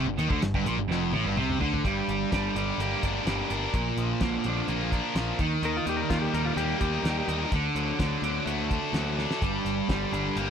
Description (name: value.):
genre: classic rock.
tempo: 127 BPM.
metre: 4/4.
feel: straight.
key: G minor.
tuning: A4 = 440 Hz.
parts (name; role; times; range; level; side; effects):
biting overdriven guitar; riff; 0.0-10.5 s; F2 to Bb4; -29 LUFS; right 10 dB; none.
tight distorted guitar; riff; 0.0-10.5 s; F2 to Eb4; -31 LUFS; left 14 dB; distortion.
growling picked electric bass; bass; 0.0-10.5 s; F1 to Eb2; -32 LUFS; equal; overdrive.
cloth-damped thuddy drum kit; drums; 0.2-10.5 s; hi-hat, kick drum, snare drum, toms; -30 LUFS; equal; none.
clean lap steel guitar; second line; 5.7-7.5 s; F4 to Bb4; -32 LUFS; left 5 dB; none.
room: little or no reverb.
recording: dry, close 1970s-style studio recording.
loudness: -25 LUFS.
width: side -7 dB against mid.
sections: 0.0-1.8 A section; 1.8-10.5 B section.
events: drum fill 0.9-1.8, 9.2.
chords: 0.0 Gm; 3.7 Bb; 5.4 Eb; 7.5 D; 9.4 Gm.